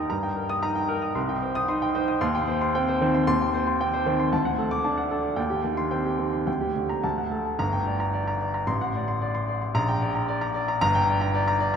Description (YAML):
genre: classical, virtuoso piano study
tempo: 113 BPM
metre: 2/4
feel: rubato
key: G minor from 3.3 s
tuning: A4 = 438 Hz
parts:
  - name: warm baby grand piano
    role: solo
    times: 0.0-11.8 s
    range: G1 to Eb6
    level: -23 LUFS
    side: equal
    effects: none
room: wet church reverb, RT60 2.6 s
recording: dark, warm production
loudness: -23 LUFS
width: side -7 dB against mid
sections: 0.0-7.6 A section; 7.6-11.8 B section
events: none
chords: 0.1 Eb/G; 1.2 Cm; 2.2 Cm/Eb; 4.3 D; 5.4 Cm/Eb; 6.5 Gm/D; 7.0 D; 7.6 Gm; 8.7 D7/A; 9.8 Gm/Bb; 10.8 Gm